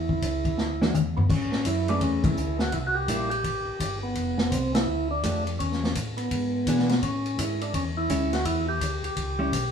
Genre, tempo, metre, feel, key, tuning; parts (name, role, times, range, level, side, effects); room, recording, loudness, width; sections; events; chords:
soul jazz organ trio; 168 BPM; 4/4; swing 64% on 8ths; A4 = 438 Hz
percussive tonewheel organ; melody; 0.0-9.7 s; B3 to G4; -28 LUFS; right 1 dB; slow rotary speaker
mellow tonewheel organ; bass; 0.0-9.7 s; F1 to B2; -30 LUFS; left 1 dB; overdrive, chorus vibrato, slow rotary speaker
vintage drum kit; drums; 0.1-9.6 s; crash cymbal, hi-hat, kick drum, ride cymbal, snare drum, toms; -28 LUFS; left 1 dB
hollow-body jazz guitar; accompaniment; 0.8-9.5 s; E3 to B4; -29 LUFS; equal
moderate stone room reverb, RT60 0.9 s; band playing live in one room, studio ambience; -24 LUFS; side -7 dB against mid
0.0-1.3 A section; 1.3-9.7 B section
drum fill 0.6-1.3; band accent 2.2, 4.7
0.0 E7(no3); 1.3 Amaj9; 2.7 C7; 4.2 F69; 5.6 E7; 7.0 Amaj7; 8.5 Em6